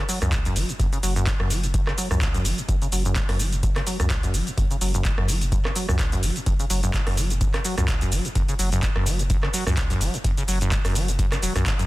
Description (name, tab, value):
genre	acid house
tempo	127 BPM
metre	4/4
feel	swing 55% on 16ths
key	F# minor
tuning	A4 = 441 Hz
part	acid bass, saw	riff	0.0-11.9 s	F#2 to F#3	-27 LUFS	equal	wide subtle chorus, sidechain pumping
part	round analog bass	bass	0.0-11.6 s	E1 to C#2	-26 LUFS	equal	tube saturation, sidechain pumping
part	booming analog drum machine	drums	0.1-11.9 s	handclaps, hi-hat, rim click, shaker	-28 LUFS	right 1 dB	none
part	electronic kick drum	drums	0.3-11.8 s	none	-25 LUFS	equal	none
room	little or no reverb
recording	dense, heavily limited modern master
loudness	-20 LUFS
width	side -18 dB against mid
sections	0.0-11.9 A section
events	filter sweep on acid bass 0.0-11.9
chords	0.0 F#5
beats	0.32 | 0.80 1.27 1.74 2.21 | 2.69 3.16 3.63 4.10 | 4.58 5.05 5.52 5.99 | 6.46 6.94 7.41 7.88 | 8.36 8.83 9.30 9.77 | 10.24 10.72 11.19 11.66